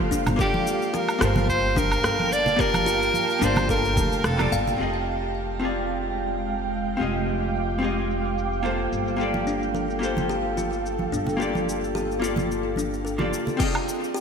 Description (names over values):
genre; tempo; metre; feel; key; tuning
sunset chillout; 109 BPM; 4/4; swing 54% on 16ths; unclear; A4 = 440 Hz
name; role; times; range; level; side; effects
vintage hollow-body jazz guitar; accompaniment; 0.0-14.2 s; Bb3 to A5; -28 LUFS; left 2 dB; auto-pan, digital delay, shimmer reverb
ethereal airy pad; sustained chords; 0.0-13.6 s; Ab3 to D6; -29 LUFS; right 2 dB; ensemble chorus, built-in reverb, shimmer reverb
kalimba; arpeggios; 0.1-4.7, 9.5-14.2 s; D4 to F5; -31 LUFS; left 2 dB; digital delay, shimmer reverb
deep house drum kit; drums; 0.1-14.2 s; crash cymbal, rim click, shaker, woodblock; -31 LUFS; right 1 dB; low-pass filter on perc, small room ambience, low-pass filter on snare, low-pass filter on cymbals, gated reverb
electronic kick drum; drums; 0.1-4.1, 13.6-13.7 s; none; -28 LUFS; equal; small room ambience
upright bass; bass; 0.3-13.3 s; F1 to D2; -30 LUFS; equal; none
congas; percussion; 0.3-4.8, 9.3-13.6 s; none; -32 LUFS; right 2 dB; none
breathy soprano saxophone; melody; 0.4-4.7 s; G4 to D5; -25 LUFS; equal; digital delay, shimmer reverb
room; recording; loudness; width
wet lush hall reverb, RT60 2.1 s; bright 1980s-style digital production; -22 LUFS; side -6 dB against mid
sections
0.0-4.8 A section; 4.8-13.6 B section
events
kick drops out 4.2-4.8; filter sweep on drum 4.8-13.6; filter sweep on ambient pad 4.8-13.6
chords
0.1 Gm9; 4.8 Fm9; 8.9 Gm9; 13.6 Fm9